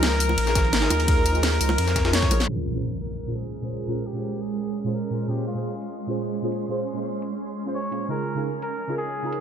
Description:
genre	liquid drum and bass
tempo	171 BPM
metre	4/4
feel	straight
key	Bb minor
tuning	A4 = 440 Hz
part	clear flugelhorn	melody	0.0-9.4 s	F4 to Db5	-30 LUFS	equal	ping-pong delay
part	deep mellow chord stab	accompaniment	0.0-9.4 s	Bb2 to C5	-29 LUFS	right 1 dB	chorus, phaser, ping-pong delay
part	shimmering ambient pad	sustained chords	0.0-9.4 s	F3 to C6	-30 LUFS	right 2 dB	chorus, built-in reverb
part	saturated sub bass	bass	0.0-2.5 s	Ab1 to F2	-24 LUFS	equal	none
part	breakbeat sampler-style drum kit	drums	0.0-2.5 s	ride cymbal, snare drum	-32 LUFS	right 1 dB	high-pass filter on cymbals, small room ambience, high-pass filter on snare
part	garage drum kit	drums	0.0-9.4 s	hi-hat, ride cymbal, snare drum, tambourine	-26 LUFS	left 1 dB	low-pass filter on hats, small room ambience, low-pass filter on cymbals, low-pass filter on perc, low-pass filter on snare
part	bongos	percussion	0.3-2.4 s	none	-31 LUFS	right 1 dB	none
part	electronic kick drum	drums	0.6-2.3 s	none	-24 LUFS	equal	small room ambience
part	impact	sound effects	2.5-3.9 s	none	-32 LUFS	equal	none
room	light reverb, digital ambience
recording	low-pass filter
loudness	-22 LUFS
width	side -8 dB against mid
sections	0.0-2.5 A section; 2.5-9.4 B section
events	drop 0.0-2.5; drum fill 2.1-2.5; impact 2.5-3.9; filter sweep on drum 2.5-9.4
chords	0.0 Db69; 2.5 Bbm7; 8.1 Db69

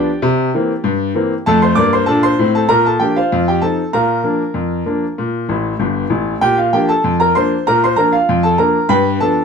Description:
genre	ragtime piano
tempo	97 BPM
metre	2/4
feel	straight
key	Bb major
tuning	A4 = 437 Hz
part	clear grand piano	solo	0.0-9.4 s	G1 to D6	-13 LUFS	equal	none
room	light reverb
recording	none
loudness	-13 LUFS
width	side -6 dB against mid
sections	0.0-6.4 A section; 6.4-9.4 A section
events	grand piano fill 5.5-6.4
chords	0.2 C7; 1.5 F; 2.7 Bb; 3.3 F7; 3.9 Bb; 8.9 G7

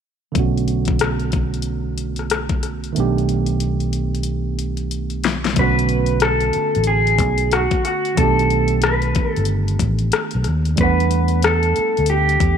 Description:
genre	R&B, neo-soul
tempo	92 BPM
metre	4/4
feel	swing 62% on 16ths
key	B minor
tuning	A4 = 440 Hz
part	tine electric piano	accompaniment	0.3-12.6 s	D3 to F#5	-24 LUFS	right 10 dB	low-pass filter
part	fingered electric bass	bass	0.4-12.6 s	G1 to E2	-20 LUFS	left 1 dB	none
part	pop drum kit	drums	0.4-12.6 s	hi-hat, kick drum, rim click, snare drum	-21 LUFS	left 5 dB	overdrive
part	electric guitar through a small old amp	melody	5.6-12.6 s	F#4 to B4	-19 LUFS	equal	lush chorus, slapback echo
room	light reverb, digital ambience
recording	1960s-style stereo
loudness	-16 LUFS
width	side -8 dB against mid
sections	0.4-5.6 A section; 5.6-12.6 B section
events	filter sweep on tine electric piano 0.4-5.6; drum fill 3.0-5.6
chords	0.4 Bm7; 3.0 B7alt; 5.6 Bm7; 8.2 B7alt; 10.8 Em11

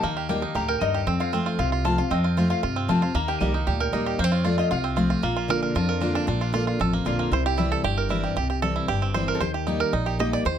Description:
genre	bluegrass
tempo	230 BPM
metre	4/4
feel	straight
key	F mixolydian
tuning	A4 = 440 Hz
part	bluegrass banjo	melody	0.0-10.6 s	Bb3 to Eb5	-27 LUFS	right 8 dB	none
part	lap resonator guitar	second line	0.0-10.6 s	D4 to Bb5	-31 LUFS	left 6 dB	none
part	picked steel-string acoustic guitar	accompaniment	0.0-10.6 s	F2 to G4	-25 LUFS	left 2 dB	none
part	upright bass	bass	0.0-10.6 s	G1 to G2	-28 LUFS	right 1 dB	none
room	moderate studio reverb, RT60 0.5 s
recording	close, detailed microphones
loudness	-22 LUFS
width	side -9 dB against mid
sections	0.0-5.2 A section; 5.2-10.6 A section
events	resonator guitar played with a steel bar solo 0.0-5.2; five-string banjo solo 5.2-10.6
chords	0.0 Eb; 1.1 F; 3.1 Eb; 4.2 F; 5.2 Bb; 7.3 C; 9.4 Eb

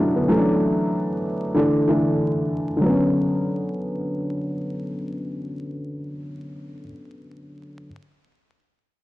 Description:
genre	hip hop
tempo	95 BPM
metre	4/4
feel	swing 57% on 16ths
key	B minor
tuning	A4 = 440 Hz
part	dark upright piano	accompaniment	0.0-7.9 s	D3 to F#4	-21 LUFS	equal	cassette tape, high-pass filter, low-pass filter
room	wet small room ambience, RT60 0.5 s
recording	blown-out, overdriven recording, vinyl crackle, overdrive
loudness	-20 LUFS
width	side -17 dB against mid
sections	0.0-2.8 A section; 2.8-5.4 B section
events	filter sweep on upright piano 0.0-2.8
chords	0.3 Dadd9; 1.6 Asus4; 2.8 Bmadd9

